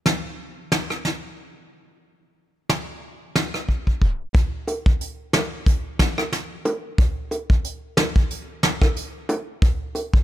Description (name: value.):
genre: dancehall.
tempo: 91 BPM.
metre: 4/4.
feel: swing 56% on 16ths.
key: none.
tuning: none.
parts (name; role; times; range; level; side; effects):
soft brush drum kit; drums; 0.1-10.2 s; hi-hat, kick drum, rim click, snare drum; -20 LUFS; equal; none.
bongos; percussion; 4.7-10.1 s; none; -27 LUFS; right 1 dB; none.
room: small room ambience.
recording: tape stop.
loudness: -20 LUFS.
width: side -13 dB against mid.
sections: 0.0-4.3 A section; 4.3-10.2 B section.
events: drum fill 3.7-4.3; tape stop 4.0-4.3.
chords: none.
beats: 0.39 1.05 | 1.71 2.37 3.03 3.69 | 4.34 5.00 5.66 6.32 | 6.98 7.64 8.30 8.96 | 9.62.